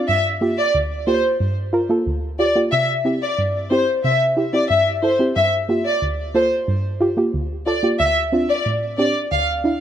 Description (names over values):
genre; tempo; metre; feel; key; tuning
dancehall; 91 BPM; 4/4; straight; G dorian; A4 = 439 Hz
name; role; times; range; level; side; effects
soft round pluck; accompaniment; 0.0-9.8 s; D2 to Bb4; -20 LUFS; right 1 dB; chorus
warm studio violin section; melody; 0.1-9.4 s; C5 to F5; -19 LUFS; left 1 dB; digital delay
room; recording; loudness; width
light reverb, small room ambience; none; -17 LUFS; side -10 dB against mid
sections
0.0-9.8 A section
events
none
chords
0.1 Gm7; 2.7 C; 5.4 Gm7; 8.0 Dm7